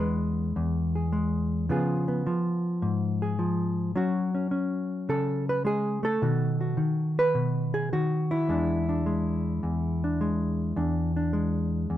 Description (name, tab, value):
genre	solo jazz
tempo	106 BPM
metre	4/4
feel	swing 69% on 8ths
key	E mixolydian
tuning	A4 = 440 Hz
part	hollow-body jazz guitar	solo	0.0-12.0 s	E2 to B4	-25 LUFS	equal	none
room	light reverb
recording	close, detailed microphones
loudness	-25 LUFS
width	side -12 dB against mid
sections	0.0-12.0 A section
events	none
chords	0.0 E7; 1.7 C#7; 4.0 F#m; 6.2 B7; 8.5 E7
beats	0.56 1.12 | 1.69 2.26 2.83 3.39 | 3.96 4.53 5.09 5.66 | 6.23 6.80 7.36 7.93 | 8.50 9.07 9.63 10.20 | 10.77 11.34 11.90